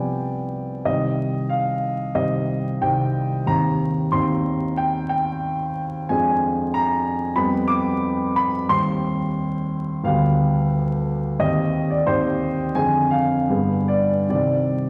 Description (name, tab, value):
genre	classical, romantic character piece for solo piano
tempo	72-96 BPM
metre	4/4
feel	rubato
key	C minor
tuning	A4 = 440 Hz
part	warm grand piano	solo	0.0-14.9 s	C2 to D6	-22 LUFS	equal	none
room	wet recital hall reverb, RT60 1.5 s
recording	vinyl crackle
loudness	-22 LUFS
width	mono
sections	0.0-14.9 A section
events	none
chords	0.0 G7/C; 0.9 Cm; 3.5 Cm/Eb; 6.1 Ddim/F; 7.4 G7/F; 8.7 Cm/Eb; 10.1 G/D; 11.4 Cm/Eb; 12.8 Dm7b5/F; 13.5 G7b9; 14.3 Cm